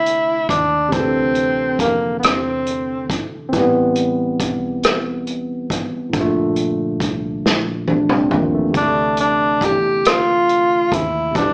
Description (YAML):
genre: slow six-eight R&B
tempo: 46 BPM (dotted quarters)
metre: 6/8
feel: straight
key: D minor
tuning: A4 = 440 Hz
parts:
  - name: breathy tenor saxophone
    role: melody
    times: 0.0-3.2, 8.8-11.5 s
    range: Bb3 to G4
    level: -16 LUFS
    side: equal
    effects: none
  - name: barky tine electric piano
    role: accompaniment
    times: 0.0-11.5 s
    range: A2 to A4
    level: -20 LUFS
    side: equal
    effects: overdrive
  - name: vintage muted fingered electric bass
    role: bass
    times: 0.0-11.5 s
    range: G1 to F2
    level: -30 LUFS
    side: equal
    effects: none
  - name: warm soul drum kit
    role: drums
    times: 0.1-11.5 s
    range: hi-hat, kick drum, rim click, snare drum, toms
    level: -19 LUFS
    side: equal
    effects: none
room: moderate large studio reverb, RT60 1.0 s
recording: band playing live in one room, small speaker sound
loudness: -15 LUFS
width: side -31 dB against mid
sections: 0.0-11.5 A section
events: drum fill 7.4-8.7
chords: 0.0 D7sus2; 3.5 Am9; 6.1 Gm9; 8.7 Dm9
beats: | 0.92 2.23 | 3.53 4.84 | 6.14 7.45 | 8.75 10.05 | 11.36